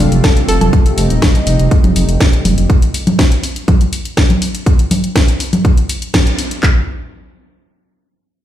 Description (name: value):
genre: melodic techno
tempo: 122 BPM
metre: 4/4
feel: straight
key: unclear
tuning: A4 = 440 Hz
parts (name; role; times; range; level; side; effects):
- lush unison pad; sustained chords; 0.0-2.7 s; C3 to G4; -20 LUFS; right 1 dB; chorus, sidechain pumping
- soft round pluck; arpeggios; 0.0-0.7 s; D4 to A4; -20 LUFS; left 1 dB; chorus, sidechain pumping, tape echo
- swelling detuned saw bass; bass; 0.0-2.7 s; Eb1 to F1; -13 LUFS; equal; sidechain pumping
- house drum kit; drums; 0.1-6.6 s; congas, hi-hat, snare drum; -16 LUFS; left 1 dB; none
- house drum kit; drums; 0.2-6.8 s; handclaps, kick drum; -11 LUFS; equal; none
room: light reverb, digital ambience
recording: played on a big sound system in a bare room, large studio reverb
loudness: -10 LUFS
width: side -12 dB against mid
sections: 0.0-6.6 A section; 6.6-8.4 B section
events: drop 0.0-6.6; band accent 6.1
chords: 0.0 Fadd9; 2.7 N.C.